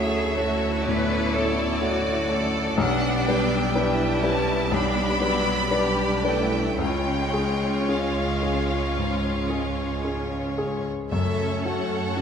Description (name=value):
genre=classical, romantic movement for piano and orchestra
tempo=54-63 BPM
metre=4/4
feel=rubato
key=unclear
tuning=A4 = 440 Hz
part: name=clear baby grand piano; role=melody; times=0.0-12.2 s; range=B1 to C#5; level=-26 LUFS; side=left 3 dB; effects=none
part: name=clear chamber violin section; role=melody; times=0.0-12.2 s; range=D5 to B5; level=-30 LUFS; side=left 2 dB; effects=none
part: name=clear chamber violin section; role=second line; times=0.0-12.2 s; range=E#4 to D5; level=-32 LUFS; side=left 1 dB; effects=none
part: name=rich chamber viola section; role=accompaniment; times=0.0-12.2 s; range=F#3 to E4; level=-29 LUFS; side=right 2 dB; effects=none
part: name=clear French horn section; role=sustained chords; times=0.0-12.2 s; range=F#3 to C#4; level=-33 LUFS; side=left 3 dB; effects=none
part: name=clear studio cello section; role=bass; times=0.0-12.2 s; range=D4 to B4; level=-31 LUFS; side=right 2 dB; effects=none
part: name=rich chamber double bass section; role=bass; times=0.0-12.2 s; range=B1 to F#2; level=-30 LUFS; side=right 4 dB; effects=none
part: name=timpani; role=percussion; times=11.1-12.2 s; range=F#2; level=-32 LUFS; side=left 1 dB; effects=none
room=moderate scoring stage reverb, RT60 1.8 s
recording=none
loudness=-21 LUFS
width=side -7 dB against mid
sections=0.0-12.2 A section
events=none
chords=0.0 Dmaj7; 2.8 G/B; 6.8 C#; 11.1 F#m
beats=0.87 1.83 | 2.80 3.76 4.72 5.72 | 6.79 7.90 8.97 10.04 | 11.12 12.16